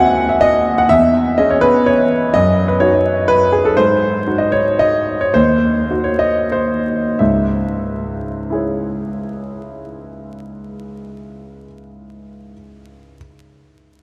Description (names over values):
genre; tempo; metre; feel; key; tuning
classical, piano waltz; 87-131 BPM; 3/4; rubato; C# minor; A4 = 439 Hz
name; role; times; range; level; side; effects
clear concert grand piano; solo; 0.0-13.2 s; C#2 to G#5; -16 LUFS; equal; none
room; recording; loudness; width
wet cathedral reverb, RT60 5.9 s; in a vast, echoing space, vinyl crackle; -15 LUFS; mono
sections
0.0-7.2 A section; 7.2-11.1 B section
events
slowing down 3.1-7.2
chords
0.0 D#m6; 0.9 C#m/E; 2.3 F#sus2; 3.8 G#7; 7.2 C#m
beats
0.41 | 0.90 1.37 1.87 | 2.34 2.81 3.29 | 3.78 4.27 4.80 | 5.34 5.89 6.52 | 7.19 7.84 8.50 | 9.14 9.77 10.43